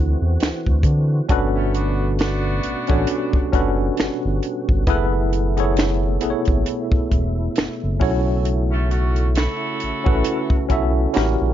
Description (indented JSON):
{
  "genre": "R&B, neo-soul",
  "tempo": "67 BPM",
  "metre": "4/4",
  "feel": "swing 56% on 16ths",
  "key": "unclear",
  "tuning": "A4 = 440 Hz",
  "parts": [
    { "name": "tine electric piano", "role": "accompaniment", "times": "0.0-11.5 s", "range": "B3 to E5", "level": "-23 LUFS", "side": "left 1 dB", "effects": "overdrive, fast stereo tremolo" },
    { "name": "percussive tonewheel organ", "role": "sustained chords", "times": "0.0-11.5 s", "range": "B2 to F#4", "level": "-30 LUFS", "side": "right 1 dB", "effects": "overdrive, chorus vibrato, slow rotary speaker" },
    { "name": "smooth synth bass", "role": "bass", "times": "0.0-11.5 s", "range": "E1 to D3", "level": "-21 LUFS", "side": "equal", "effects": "none" },
    { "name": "compact cocktail drum kit", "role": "drums", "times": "0.4-11.4 s", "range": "finger snaps, hi-hat, kick drum, snare drum", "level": "-20 LUFS", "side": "equal", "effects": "none" },
    { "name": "bright saxophone section", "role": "stabs", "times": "1.5-10.7 s", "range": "A3 to A4", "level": "-27 LUFS", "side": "right 1 dB", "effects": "none" }
  ],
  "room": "little or no reverb",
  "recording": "dark, warm production, nothing above 7.5 kHz",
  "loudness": "-17 LUFS",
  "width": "side -11 dB against mid",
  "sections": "0.0-11.5 A section",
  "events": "none",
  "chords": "0.0 D9; 1.3 Gmaj9; 4.9 F#m11; 8.0 B9sus4"
}